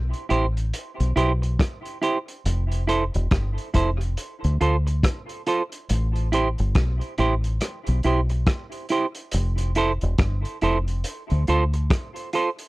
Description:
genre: dub reggae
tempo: 70 BPM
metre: 4/4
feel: swing 61% on 16ths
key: A minor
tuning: A4 = 439 Hz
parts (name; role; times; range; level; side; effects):
- deep dub fingered electric bass; bass; 0.0-11.9 s; E1 to D2; -22 LUFS; equal; none
- vintage drum kit; drums; 0.1-12.7 s; hi-hat, kick drum, rim click; -25 LUFS; equal; none
- semi-hollow electric guitar; accompaniment; 0.3-12.5 s; E4 to C5; -25 LUFS; right 3 dB; dub echo
room: little or no reverb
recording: dry, close 1970s-style studio recording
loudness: -21 LUFS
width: side -20 dB against mid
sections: 0.0-12.7 A section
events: none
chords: 0.0 Am7; 2.5 Fmaj7; 4.2 Dm7; 5.9 Am7; 9.3 Fmaj7; 11.0 Dm7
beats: 0.73 1.59 | 2.45 3.31 4.17 5.03 | 5.89 6.75 7.61 8.47 | 9.33 10.19 11.05 11.91

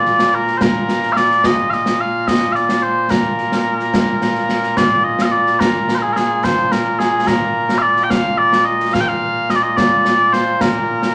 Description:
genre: scottish traditional, Scottish pipe music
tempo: 72 BPM (dotted quarters)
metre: 6/8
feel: straight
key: Bb major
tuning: A4 = 438 Hz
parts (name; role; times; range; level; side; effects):
- mellow small bagpipes; melody; 0.0-11.1 s; Bb2 to G5; -17 LUFS; equal; none
- concert snare drum and concert bass drum; drums; 0.1-11.1 s; none; -22 LUFS; equal; none
room: moderate studio reverb, RT60 0.9 s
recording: nothing above 10.4 kHz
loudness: -16 LUFS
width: mono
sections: 0.0-4.8 A section; 4.8-11.1 B section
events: none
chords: none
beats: 0.61 | 1.44 2.27 | 3.11 3.94 | 4.77 5.61 | 6.44 7.27 | 8.11 8.94 | 9.77 10.61

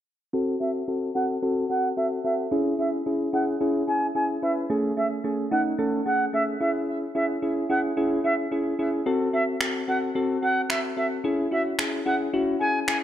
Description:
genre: dance-pop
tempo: 110 BPM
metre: 4/4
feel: straight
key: unclear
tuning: A4 = 444 Hz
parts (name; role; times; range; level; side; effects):
- soft electric-piano-like synth keys; accompaniment; 0.3-13.0 s; A3 to B4; -25 LUFS; left 1 dB; chorus, low-pass filter
- bright reedy silver concert flute; melody; 0.6-13.0 s; E5 to G#5; -27 LUFS; right 1 dB; low-pass filter, tape echo
- electronic finger snaps; drums; 9.6-13.0 s; none; -27 LUFS; equal; none
room: moderate lush hall reverb, RT60 2.3 s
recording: dark, warm production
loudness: -23 LUFS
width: side -11 dB against mid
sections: 0.3-13.0 A section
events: filter sweep 0.3-13.0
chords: 0.3 Am6; 2.5 E6; 4.7 Amaj7; 6.6 E6; 9.1 Am6; 11.2 E6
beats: | 0.34 0.88 1.43 1.97 | 2.52 3.06 3.61 4.15 | 4.70 5.24 5.79 6.33 | 6.88 7.43 7.97 8.52 | 9.06 9.61 10.15 10.70 | 11.24 11.79 12.34 12.88

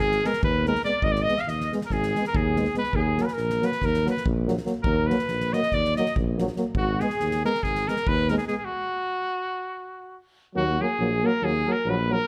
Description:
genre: balkan folk, Balkan brass band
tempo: 283 BPM (eighths)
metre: 9/8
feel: straight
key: Eb harmonic minor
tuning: A4 = 439 Hz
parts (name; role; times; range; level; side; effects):
- clear cornet; melody; 0.0-12.3 s; Gb4 to F5; -29 LUFS; equal; none
- warm flugelhorn; second line; 0.0-12.3 s; Gb4 to F5; -35 LUFS; equal; none
- breathy tuba; bass; 0.0-12.2 s; Ab1 to Eb2; -30 LUFS; equal; none
- soft-mallet drum kit; percussion; 0.1-8.5 s; kick drum, snare drum; -33 LUFS; equal; none
- mellow French horn; accompaniment; 0.2-12.2 s; Bb3 to Cb4; -33 LUFS; equal; none
- warm euphonium; accompaniment; 0.2-12.2 s; Gb3 to Ab3; -34 LUFS; equal; none
room: light reverb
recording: none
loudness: -25 LUFS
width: mono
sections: 0.0-10.6 A section; 10.6-12.3 A section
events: stop 8.7-10.6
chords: 0.0 Abm; 2.9 Ebm; 6.7 Abm; 8.7 N.C.; 10.6 Ebm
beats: 0.17 0.38 0.59 0.81 | 1.02 1.23 1.45 1.66 1.87 2.08 2.30 2.51 2.72 | 2.93 3.15 3.36 3.57 3.78 4.00 4.21 4.42 4.63 | 4.84 5.05 5.27 5.48 5.69 5.90 6.11 6.33 6.54 | 6.75 6.96 7.17 7.38 7.60 7.81 8.02 8.23 8.44 | 8.65 8.87 9.08 9.29 9.50 9.71 9.92 10.13 10.34 | 10.56 10.77 10.98 11.19 11.40 11.61 11.82 12.04 12.25

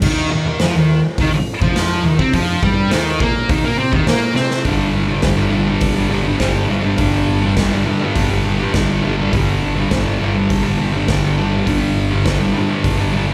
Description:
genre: garage rock duo or trio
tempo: 103 BPM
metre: 4/4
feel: straight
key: G minor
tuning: A4 = 440 Hz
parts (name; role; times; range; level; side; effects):
- thick fuzz guitar; riff; 0.0-13.3 s; G2 to C4; -18 LUFS; equal; distortion
- growling picked electric bass; bass; 0.0-13.3 s; G1 to C3; -26 LUFS; equal; overdrive
- raw garage drum kit; drums; 0.0-13.0 s; crash cymbal, hi-hat, kick drum, snare drum; -23 LUFS; equal; none
room: light reverb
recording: band playing live in one room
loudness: -17 LUFS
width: mono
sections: 0.0-4.7 A section; 4.7-13.3 B section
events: drum fill 4.4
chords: 0.0 Eb5; 4.7 G5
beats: | 0.02 0.60 1.18 1.76 | 2.34 2.92 3.50 4.08 | 4.66 5.24 5.82 6.41 | 6.99 7.57 8.16 8.74 | 9.33 9.91 10.49 11.08 | 11.66 12.25 12.84

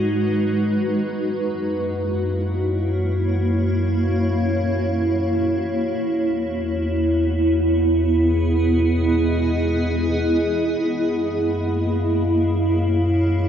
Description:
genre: ambient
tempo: free time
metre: none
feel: none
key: F# mixolydian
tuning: A4 = 439 Hz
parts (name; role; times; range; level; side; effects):
- granular cloud pad; sustained chords; 0.0-13.5 s; G#3 to D#5; -20 LUFS; equal; built-in reverb
- warm sub bass; bass; 0.0-13.5 s; E2 to G#2; -23 LUFS; equal; tube saturation
room: wet huge ambient reverb, RT60 8.1 s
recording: in a vast, echoing space, nothing above 8.0 kHz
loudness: -18 LUFS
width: side -8 dB against mid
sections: 0.0-13.5 A section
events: none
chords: 0.0 G#m7; 1.2 F#7; 6.0 Emaj7; 10.8 F#7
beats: free time

